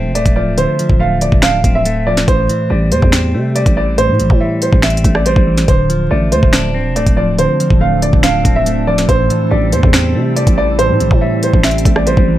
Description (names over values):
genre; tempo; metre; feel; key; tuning
hip hop, drill; 141 BPM; 4/4; half-time; D minor; A4 = 439 Hz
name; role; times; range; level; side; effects
dark grand piano; melody; 0.0-12.4 s; C5 to F5; -17 LUFS; right 2 dB; low-pass filter
clean electric guitar; accompaniment; 0.0-12.4 s; A2 to D4; -17 LUFS; left 1 dB; spring reverb, low-pass filter
growling 808-style bass; bass; 0.0-12.4 s; D1 to C3; -16 LUFS; equal; none
drill drum kit; drums; 0.2-12.3 s; finger snaps, hi-hat, kick drum, rim click, snare drum; -13 LUFS; equal; none
deep dark ambient pad; sustained chords; 6.9-12.4 s; F3 to A4; -23 LUFS; right 1 dB; chorus, built-in reverb
room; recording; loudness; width
little or no reverb; vinyl crackle; -10 LUFS; side -13 dB against mid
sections
0.0-12.4 A section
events
none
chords
0.0 Dm7; 2.3 Am7; 5.7 Dm7; 9.1 Am7